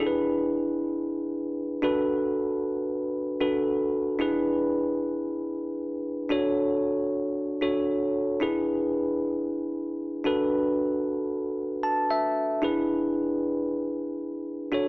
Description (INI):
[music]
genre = pop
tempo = 114 BPM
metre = 4/4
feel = straight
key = E mixolydian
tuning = A4 = 438 Hz
[part]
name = bell-like tine electric piano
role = solo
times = 0.0-14.9 s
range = D4 to A5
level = -25 LUFS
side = equal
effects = wide subtle chorus
[sound]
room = wet scoring stage reverb, RT60 1.5 s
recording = AM radio sound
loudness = -25 LUFS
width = side -22 dB against mid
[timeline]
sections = 0.0-14.9 A section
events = tine electric piano fill 11.6-12.6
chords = 0.0 E7; 1.8 Bm7/D; 4.2 E7; 6.3 Dmaj7; 8.4 E7; 10.3 Bm7/D; 12.6 E7